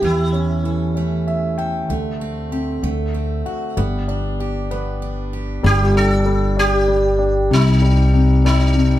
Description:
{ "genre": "six-eight pop ballad", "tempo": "64 BPM (dotted quarters)", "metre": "6/8", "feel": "straight", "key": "G major", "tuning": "A4 = 440 Hz", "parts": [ { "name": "sitar", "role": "melody", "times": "0.0-1.2, 5.7-9.0 s", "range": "Eb4 to A4", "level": "-20 LUFS", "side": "right 1 dB", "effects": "none" }, { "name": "warm concert grand piano", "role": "accompaniment", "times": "0.0-9.0 s", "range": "C3 to G5", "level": "-22 LUFS", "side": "left 3 dB", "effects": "none" }, { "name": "picked steel-string acoustic guitar", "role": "arpeggios", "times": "0.0-6.2 s", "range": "E3 to A4", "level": "-25 LUFS", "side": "right 4 dB", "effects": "none" }, { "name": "upright bass", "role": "bass", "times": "0.0-9.0 s", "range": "G1 to E2", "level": "-18 LUFS", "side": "equal", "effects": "none" } ], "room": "moderate large studio reverb, RT60 1.0 s", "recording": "band playing live in one room", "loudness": "-16 LUFS", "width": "side -13 dB against mid", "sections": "0.0-5.6 A section; 5.6-9.0 B section", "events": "grand piano fill 1.0-1.9", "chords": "0.0 A/E; 1.9 D7sus4; 2.8 D7; 3.8 G; 5.6 G5; 7.5 C5" }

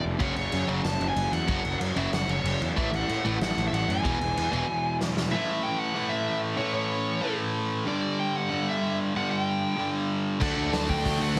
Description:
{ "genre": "punk rock", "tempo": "188 BPM", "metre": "4/4", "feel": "straight", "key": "A mixolydian from 5.3 s", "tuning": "A4 = 440 Hz", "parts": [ { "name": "biting lead guitar", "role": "melody", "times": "0.0-11.4 s", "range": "C#5 to A5", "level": "-33 LUFS", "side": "equal", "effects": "overdrive, tape echo" }, { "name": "fuzz guitar", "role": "riff", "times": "0.0-5.3, 10.4-11.4 s", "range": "E2 to D4", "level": "-35 LUFS", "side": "equal", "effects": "distortion" }, { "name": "fuzz picked electric bass", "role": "bass", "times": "0.1-4.6, 10.4-11.4 s", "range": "E1 to A2", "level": "-32 LUFS", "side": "equal", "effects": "overdrive" }, { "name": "distorted electric guitar", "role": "riff", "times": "0.2-11.4 s", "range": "E2 to D4", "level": "-31 LUFS", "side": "equal", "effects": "distortion" }, { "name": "distorted electric guitar", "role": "riff", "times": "0.2-4.7, 10.4-11.4 s", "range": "E2 to D4", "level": "-35 LUFS", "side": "equal", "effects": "overdrive" }, { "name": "raw garage drum kit", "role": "drums", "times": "0.2-5.2, 10.4-11.4 s", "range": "crash cymbal, hi-hat, kick drum, snare drum", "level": "-34 LUFS", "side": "equal", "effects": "none" } ], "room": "light reverb", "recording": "heavily compressed radio sound, multiband compression", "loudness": "-27 LUFS", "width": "mono", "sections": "0.0-5.3 A section; 5.3-11.4 B section", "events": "half time 0.0-5.3; drum fill 5.0-5.3", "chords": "0.2 F#5; 2.8 A5; 4.0 E; 5.3 A; 7.9 G5; 10.4 D" }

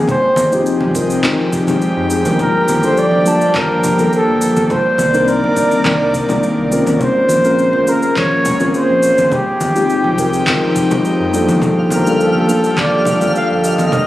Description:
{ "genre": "sunset chillout", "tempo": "104 BPM", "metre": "4/4", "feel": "straight", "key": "G phrygian", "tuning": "A4 = 440 Hz", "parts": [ { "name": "breathy flugelhorn", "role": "melody", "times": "0.0-14.1 s", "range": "G4 to F5", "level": "-16 LUFS", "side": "equal", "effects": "ping-pong delay" }, { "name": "mellow tine electric piano", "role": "accompaniment", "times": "0.0-13.9 s", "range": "G3 to A5", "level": "-17 LUFS", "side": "left 1 dB", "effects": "slow stereo tremolo, auto-pan, low-pass filter, digital delay" }, { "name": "airy breathy pad", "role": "sustained chords", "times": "0.0-14.1 s", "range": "Eb3 to D5", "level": "-19 LUFS", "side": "equal", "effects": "chorus" }, { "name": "warm sub bass", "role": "bass", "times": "0.0-13.9 s", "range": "D1 to F2", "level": "-27 LUFS", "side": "equal", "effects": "none" }, { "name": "electronic kick drum", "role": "drums", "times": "0.1-14.1 s", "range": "none", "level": "-26 LUFS", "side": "equal", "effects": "small room reverb" }, { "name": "electronic shaker and handclaps", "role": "drums", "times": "0.1-14.1 s", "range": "none", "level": "-24 LUFS", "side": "equal", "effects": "small room reverb" }, { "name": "congas", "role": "percussion", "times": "0.1-14.0 s", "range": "none", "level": "-22 LUFS", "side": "left 1 dB", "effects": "none" }, { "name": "twinkling granular texture", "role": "texture", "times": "11.8-14.1 s", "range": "F5 to F6", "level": "-23 LUFS", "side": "left 1 dB", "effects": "built-in reverb" } ], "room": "moderate lush hall reverb, RT60 1.8 s", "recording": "recorded on a phone in the room, studio reverb, compression", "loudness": "-12 LUFS", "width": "side -15 dB against mid", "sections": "0.0-14.1 A section", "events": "filter sweep on tine electric piano 0.0-14.1", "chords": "0.1 Fm9; 2.4 Gm9; 4.7 Cm9; 7.0 Bbm9; 9.3 Fm9; 11.6 Gm9" }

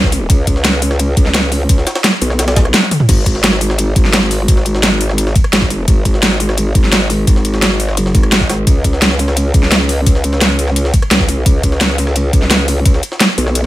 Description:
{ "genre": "dark technical drum and bass", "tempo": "172 BPM", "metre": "4/4", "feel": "straight", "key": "unclear", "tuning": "A4 = 440 Hz", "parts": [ { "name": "growl bass", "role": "bass", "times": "0.0-13.7 s", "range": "G#1 to C#2", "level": "-15 LUFS", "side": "equal", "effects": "chorus" }, { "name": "electronic kick drum", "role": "drums", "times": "0.0-12.9 s", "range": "none", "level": "-12 LUFS", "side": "equal", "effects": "none" }, { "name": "jungle sampler-style drum kit", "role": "drums", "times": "0.0-13.7 s", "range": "hi-hat, ride cymbal, snare drum", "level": "-23 LUFS", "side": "equal", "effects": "overdrive, high-pass filter on cymbals, high-pass filter on snare, high-pass filter on hats" }, { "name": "dubstep drum kit", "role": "drums", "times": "0.1-13.6 s", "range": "crash cymbal, hi-hat, rim click, snare drum, toms", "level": "-14 LUFS", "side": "equal", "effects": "none" } ], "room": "little or no reverb", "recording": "none", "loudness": "-10 LUFS", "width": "side -15 dB against mid", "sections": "0.0-13.7 A section", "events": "drum fill 2.8", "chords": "none" }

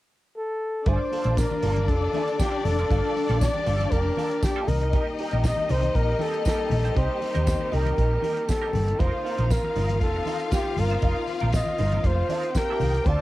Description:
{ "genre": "disco", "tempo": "118 BPM", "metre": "4/4", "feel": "straight", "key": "unclear", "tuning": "A4 = 440 Hz", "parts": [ { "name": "breathy flugelhorn", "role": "melody", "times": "0.4-13.2 s", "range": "G4 to Eb5", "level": "-27 LUFS", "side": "equal", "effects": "none" }, { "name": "warm studio violin section", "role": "second line", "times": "0.9-13.2 s", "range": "D4 to A5", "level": "-31 LUFS", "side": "left 7 dB", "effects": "cassette tape" }, { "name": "clean electric guitar", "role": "accompaniment", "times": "0.9-13.2 s", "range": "Bb3 to C5", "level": "-36 LUFS", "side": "right 8 dB", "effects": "wah, cassette tape" }, { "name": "clear symphonic string section", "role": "sustained chords", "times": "0.9-13.2 s", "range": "D3 to G4", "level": "-36 LUFS", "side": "equal", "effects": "cassette tape" }, { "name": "hollow-body short-scale fingered electric bass", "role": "bass", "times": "0.9-13.2 s", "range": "F1 to Eb2", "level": "-24 LUFS", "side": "equal", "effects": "none" }, { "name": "damped 70s drum kit", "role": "drums", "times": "0.9-13.2 s", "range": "hi-hat, kick drum, snare drum", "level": "-27 LUFS", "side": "equal", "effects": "cassette tape" }, { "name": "congas", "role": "percussion", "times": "0.9-13.2 s", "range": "none", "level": "-36 LUFS", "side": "left 5 dB", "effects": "none" }, { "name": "tambourine", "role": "percussion", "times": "1.4-12.7 s", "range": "none", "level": "-42 LUFS", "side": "right 10 dB", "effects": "none" } ], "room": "studio ambience", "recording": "home recording on cassette", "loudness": "-22 LUFS", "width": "side -16 dB against mid", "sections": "0.9-13.2 A section", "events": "none", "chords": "0.0 N.C.; 0.9 Gm9; 4.7 Cm7; 9.0 F7sus4" }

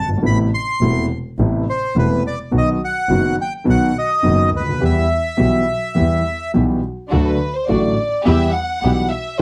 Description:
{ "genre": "tango", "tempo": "105 BPM", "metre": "4/4", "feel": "rubato", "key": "E minor", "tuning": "A4 = 440 Hz", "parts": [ { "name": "bandoneon", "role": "melody", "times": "0.0-6.5 s", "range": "B4 to C6", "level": "-23 LUFS", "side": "equal", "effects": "slapback echo" }, { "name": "warm concert grand piano", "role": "accompaniment", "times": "0.0-9.4 s", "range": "E1 to G4", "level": "-21 LUFS", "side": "equal", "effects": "none" }, { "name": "warm double bass", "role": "bass", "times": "0.0-9.1 s", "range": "E1 to E2", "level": "-23 LUFS", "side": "equal", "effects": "none" }, { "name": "warm symphonic violin section", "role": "second line", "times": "7.1-9.4 s", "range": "A4 to F#5", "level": "-24 LUFS", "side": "equal", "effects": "none" }, { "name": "warm studio string section", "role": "stabs", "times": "7.1-9.4 s", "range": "A3 to G4", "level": "-28 LUFS", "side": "equal", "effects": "none" } ], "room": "light reverb", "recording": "dry, close 1970s-style studio recording", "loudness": "-18 LUFS", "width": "mono", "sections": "0.0-7.1 A section; 7.1-9.4 B section", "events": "violin section solo 7.1-9.4", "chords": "0.2 Amadd9; 2.5 B; 4.8 Em; 7.1 D; 8.3 Em" }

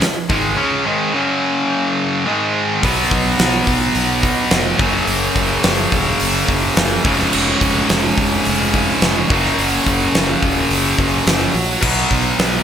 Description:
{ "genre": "hard rock", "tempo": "107 BPM", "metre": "4/4", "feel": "straight", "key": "unclear", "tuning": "A4 = 441 Hz", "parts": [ { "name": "high-gain distorted guitar", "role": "riff", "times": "0.0-12.6 s", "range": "Db2 to Db4", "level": "-16 LUFS", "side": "equal", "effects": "distortion" }, { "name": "fuzz fingered electric bass", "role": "bass", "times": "0.0-12.6 s", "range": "Eb1 to Cb2", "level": "-23 LUFS", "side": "equal", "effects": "overdrive" }, { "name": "huge arena drum kit", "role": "drums", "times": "0.0-12.5 s", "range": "crash cymbal, hi-hat, kick drum, snare drum", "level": "-18 LUFS", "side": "equal", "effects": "none" } ], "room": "light reverb, small room ambience", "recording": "bright 1980s-style digital production", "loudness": "-14 LUFS", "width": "side -8 dB against mid", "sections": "0.0-2.8 A section; 2.8-12.6 B section", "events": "none", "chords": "0.0 Ab5; 1.1 Gb5; 2.3 Ab5; 2.8 Cb5; 4.8 Gb5; 7.0 Db/F; 9.3 Gb5; 11.8 Cb5" }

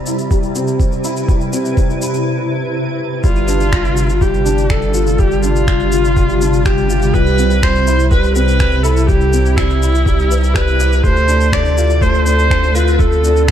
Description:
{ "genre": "piano and strings electronica", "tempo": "123 BPM", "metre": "4/4", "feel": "straight", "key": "unclear", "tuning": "A4 = 440 Hz", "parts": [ { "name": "granular cloud pad", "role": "sustained chords", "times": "0.0-13.5 s", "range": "C3 to B4", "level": "-21 LUFS", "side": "left 1 dB", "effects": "built-in reverb, analog chorus, sidechain pumping" }, { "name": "felt-muted upright piano", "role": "riff", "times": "0.0-13.5 s", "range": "G3 to B4", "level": "-19 LUFS", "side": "left 1 dB", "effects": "ensemble chorus, analog delay" }, { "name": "round analog bass", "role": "bass", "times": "0.0-13.5 s", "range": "G1 to D2", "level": "-15 LUFS", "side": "equal", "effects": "tube saturation, sidechain pumping, high-pass filter" }, { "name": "electronic shaker and finger snaps", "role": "drums", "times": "0.1-13.5 s", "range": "none", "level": "-26 LUFS", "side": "left 1 dB", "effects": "overdrive" }, { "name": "electronic kick drum", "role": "drums", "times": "0.3-13.5 s", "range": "none", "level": "-16 LUFS", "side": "equal", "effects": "none" }, { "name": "dark viola", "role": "melody", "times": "3.2-13.5 s", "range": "E4 to D5", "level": "-18 LUFS", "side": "equal", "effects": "analog delay" } ], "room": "light reverb", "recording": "none", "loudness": "-12 LUFS", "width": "side -10 dB against mid", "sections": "0.0-3.2 A section; 3.2-13.5 B section", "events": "build-up 0.0-3.2; break 2.3-3.2; drop 3.2-13.5", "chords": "0.0 Cmaj7; 3.2 G7sus4; 7.1 Cmaj7; 11.0 Dm7" }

